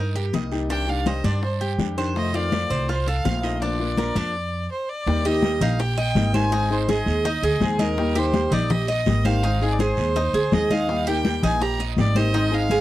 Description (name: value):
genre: latin, Cuban son and guajira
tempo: 165 BPM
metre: 4/4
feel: straight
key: Eb major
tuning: A4 = 445 Hz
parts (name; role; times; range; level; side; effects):
- clear fiddle; melody; 0.0-12.8 s; Ab4 to Bb5; -27 LUFS; equal; none
- Cuban tres; arpeggios; 0.0-12.8 s; D4 to F5; -27 LUFS; right 2 dB; none
- upright bass; bass; 0.0-12.8 s; Ab1 to G2; -24 LUFS; right 1 dB; none
- congas; percussion; 0.1-12.8 s; none; -26 LUFS; left 2 dB; none
- bongos; percussion; 0.2-12.8 s; none; -29 LUFS; left 6 dB; none
- nylon-string guitar; accompaniment; 0.3-12.8 s; C3 to Ab4; -27 LUFS; left 4 dB; none
- guiro; percussion; 0.3-12.8 s; none; -39 LUFS; right 16 dB; none
room: little or no reverb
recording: dry, close 1970s-style studio recording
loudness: -20 LUFS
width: side -15 dB against mid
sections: 0.0-5.1 A section; 5.1-12.8 B section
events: stop 4.3-5.1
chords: 0.0 Eb; 0.7 Cmadd9; 2.2 F7; 3.6 Bb; 5.1 Eb; 6.5 Ab; 8.0 Eb; 9.4 Ab; 10.9 Eb